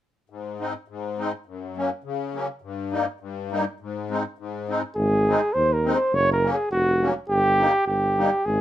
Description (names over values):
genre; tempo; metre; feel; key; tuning
alpine folk; 103 BPM; 2/4; straight; Ab major; A4 = 441 Hz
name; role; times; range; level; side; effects
musette accordion; accompaniment; 0.3-8.3 s; Gb2 to Eb4; -26 LUFS; left 3 dB; none
warm flugelhorn; melody; 5.0-8.6 s; Gb4 to Db5; -20 LUFS; right 1 dB; none
breathy tuba; bass; 5.0-8.6 s; F1 to Eb2; -25 LUFS; right 1 dB; none
room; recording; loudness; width
light reverb; minimal, uncompressed stereo recording; -21 LUFS; side -12 dB against mid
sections
0.3-5.0 A section; 5.0-8.6 B section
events
none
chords
0.3 Ab; 1.5 Gb; 2.6 Eb/G; 3.8 Ab; 6.1 Gb; 7.3 Eb/G